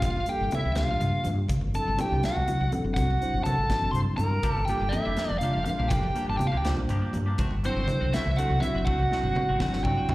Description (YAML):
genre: electric jazz fusion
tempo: 81 BPM (dotted quarters)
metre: 6/8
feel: straight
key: G dorian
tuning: A4 = 440 Hz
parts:
  - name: biting lead guitar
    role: melody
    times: 0.0-10.1 s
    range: C5 to C6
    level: -29 LUFS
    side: equal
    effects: overdrive, slapback echo
  - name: silver concert flute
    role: second line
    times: 0.0-9.8 s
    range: C4 to C5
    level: -36 LUFS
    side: right 1 dB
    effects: slapback echo
  - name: mellow tine electric piano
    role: accompaniment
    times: 0.0-10.1 s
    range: F3 to F#5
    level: -33 LUFS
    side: left 1 dB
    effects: analog chorus, slapback echo
  - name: woody fretless electric bass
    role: bass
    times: 0.0-10.1 s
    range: F1 to G2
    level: -28 LUFS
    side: equal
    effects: ensemble chorus
  - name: modern studio drum kit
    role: drums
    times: 0.0-10.1 s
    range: hi-hat, kick drum, snare drum, toms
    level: -32 LUFS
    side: equal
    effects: none
  - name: congas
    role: percussion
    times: 0.0-10.1 s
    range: none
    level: -32 LUFS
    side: equal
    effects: none
  - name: twangy electric guitar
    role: stabs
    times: 4.4-10.1 s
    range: F3 to G4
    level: -38 LUFS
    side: equal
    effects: analog chorus, slapback echo
room: light reverb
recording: live gig heard through the venue's PA, recital hall reverb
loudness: -24 LUFS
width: side -18 dB against mid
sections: 0.0-10.1 A section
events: drum fill 8.9-10.1; tine electric piano fill 9.6-10.1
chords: 0.0 Gm7; 1.5 D7; 4.4 Gm7; 7.4 D7